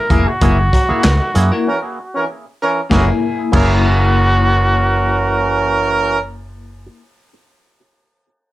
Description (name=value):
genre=funk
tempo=96 BPM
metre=4/4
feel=straight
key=F# mixolydian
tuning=A4 = 443 Hz
part: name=warm trumpet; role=melody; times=0.0-6.2 s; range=F#4 to A#4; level=-19 LUFS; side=right 1 dB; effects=none
part: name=clean electric guitar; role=accompaniment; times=0.1-7.1 s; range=A#3 to A#4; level=-21 LUFS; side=left 5 dB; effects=harmonic tremolo
part: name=auto-wah clav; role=stabs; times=0.1-6.9 s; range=F#3 to G#4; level=-24 LUFS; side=right 3 dB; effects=analog delay
part: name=hollow-body short-scale fingered electric bass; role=bass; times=0.1-6.9 s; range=E#1 to F#2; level=-16 LUFS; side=equal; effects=none
part: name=crunchy breakbeat drum kit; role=drums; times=0.1-3.7 s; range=crash cymbal, handclaps, hi-hat, kick drum, snare drum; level=-18 LUFS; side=equal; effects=none
part: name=warm horn section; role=second line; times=1.7-6.2 s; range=E3 to A#4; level=-18 LUFS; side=right 3 dB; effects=none
room=light reverb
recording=dark, warm production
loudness=-13 LUFS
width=side -16 dB against mid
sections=0.0-2.9 A section; 2.9-5.4 B section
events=band accent 0.4-2.9; break 1.7-2.9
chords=0.0 F#9